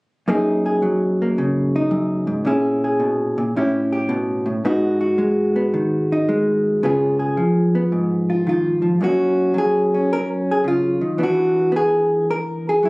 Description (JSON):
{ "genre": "solo jazz", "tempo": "110 BPM", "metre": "4/4", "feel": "swing 68% on 8ths", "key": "F# major", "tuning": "A4 = 440 Hz", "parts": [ { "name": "vintage hollow-body jazz guitar", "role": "solo", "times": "0.3-12.9 s", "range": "F#2 to A#4", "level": "-16 LUFS", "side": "equal", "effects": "none" } ], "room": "light reverb", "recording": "recorded on a phone in the room, studio ambience", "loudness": "-17 LUFS", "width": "side -27 dB against mid", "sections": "0.3-9.0 A section; 9.0-12.9 B section", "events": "none", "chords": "0.3 F#69; 2.5 A#m7b5; 3.5 A9; 4.6 G#m7; 6.8 C#7; 9.0 F#maj9; 11.2 E7", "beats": "| 0.27 0.82 1.36 1.91 | 2.46 3.00 3.55 4.09 | 4.64 5.18 5.73 6.27 | 6.82 7.36 7.91 8.45 | 9.00 9.54 10.09 10.63 | 11.18 11.72 12.27 12.81" }